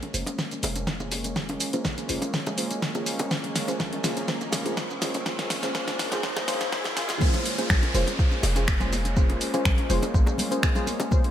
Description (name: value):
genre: afro house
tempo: 123 BPM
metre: 4/4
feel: straight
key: Bb minor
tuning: A4 = 438 Hz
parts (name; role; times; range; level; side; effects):
- warm analog pad; sustained chords; 0.0-11.3 s; Ab3 to Db4; -34 LUFS; equal; chorus, sidechain pumping
- deep mellow chord stab; stabs; 0.0-11.3 s; Bb3 to C5; -31 LUFS; left 1 dB; chorus, sidechain pumping, digital delay
- deep house drum kit; drums; 0.0-11.3 s; crash cymbal, finger snaps, hi-hat, shaker, snare drum; -29 LUFS; equal; gated reverb
- bongos; percussion; 0.0-11.3 s; none; -36 LUFS; equal; none
- riser and downlifter; sound effects; 1.6-11.1 s; none; -35 LUFS; equal; none
- warm 808-style bass; bass; 0.1-10.2 s; F1 to Bb1; -29 LUFS; equal; tube saturation, sidechain pumping
- electronic kick drum; drums; 0.4-11.2 s; none; -23 LUFS; equal; high-pass filter on kick, high-pass filter on room
- congas; percussion; 7.2-11.2 s; none; -35 LUFS; left 2 dB; none
room: moderate lush hall reverb, RT60 1.7 s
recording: bright 1980s-style digital production, high-pass filter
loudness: -23 LUFS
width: side -11 dB against mid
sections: 0.0-7.2 A section; 7.2-11.3 B section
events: build-up 0.0-7.2; drum fill 0.0-7.2; filter sweep on synth stab 0.0-7.2; riser 1.6-7.2; drop 7.2-11.3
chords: 0.0 Bbm9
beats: 0.39 0.87 | 1.36 1.85 2.34 2.83 | 3.31 3.80 4.29 4.78 | 5.26 5.75 6.24 6.73 | 7.21 7.70 8.19 8.68 | 9.17 9.65 10.14 10.63 | 11.12